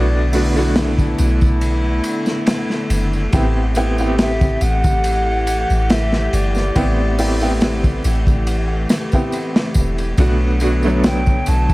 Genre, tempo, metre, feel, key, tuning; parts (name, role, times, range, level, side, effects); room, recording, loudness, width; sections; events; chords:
trip hop; 70 BPM; 4/4; swing 53% on 16ths; A4 = 438 Hz
bright wooden flute; melody; 0.0-11.7 s; D5 to A5; -26 LUFS; left 1 dB; dub echo
bright upright piano; accompaniment; 0.0-11.7 s; F#3 to G4; -22 LUFS; right 1 dB; tremolo, tape echo
warm studio string section; sustained chords; 0.0-11.7 s; D3 to G4; -23 LUFS; equal
soft 808-style bass; bass; 0.0-11.7 s; E1 to B1; -18 LUFS; equal
crunchy breakbeat drum kit; drums; 0.3-11.7 s; hi-hat, kick drum, ride cymbal, snare drum; -20 LUFS; equal
tambourine; percussion; 0.3-11.7 s; -36 LUFS; right 1 dB
studio ambience; echo-heavy mix, vinyl crackle; -14 LUFS; side -20 dB against mid
0.0-11.7 A section
0.0 Bm7; 3.3 Am7; 10.2 Bm7